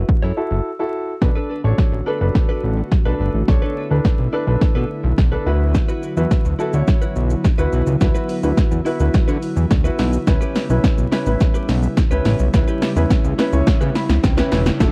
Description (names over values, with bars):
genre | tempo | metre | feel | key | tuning
dance-pop | 106 BPM | 4/4 | straight | B minor | A4 = 438 Hz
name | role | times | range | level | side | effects
warm baby grand piano | accompaniment | 0.0-14.9 s | C#4 to B5 | -26 LUFS | equal | sidechain pumping, plate reverb
fat analog bass | bass | 0.0-14.9 s | E1 to D3 | -21 LUFS | equal | sidechain pumping
direct-recorded clean electric guitar | riff | 0.1-14.8 s | D4 to C#5 | -32 LUFS | equal | lush chorus
punchy analog drum machine | drums | 0.1-14.9 s | hi-hat, kick drum, shaker, snare drum | -19 LUFS | equal | none
airy breathy pad | sustained chords | 1.5-14.9 s | C#3 to F#4 | -30 LUFS | equal | chorus, sidechain pumping, plate reverb
riser | sound effects | 12.9-14.9 s | none | -36 LUFS | equal | none
room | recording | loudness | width
light reverb | dark, warm production, vinyl crackle | -18 LUFS | mono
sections
0.0-1.2 A section; 1.2-14.9 B section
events
break 0.7-1.2; build-up 1.2-14.9; drum fill 1.2-14.9; grand piano fill 13.7-14.8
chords
0.0 F#m7; 1.2 Bm7; 5.5 D69; 10.3 C#m7b5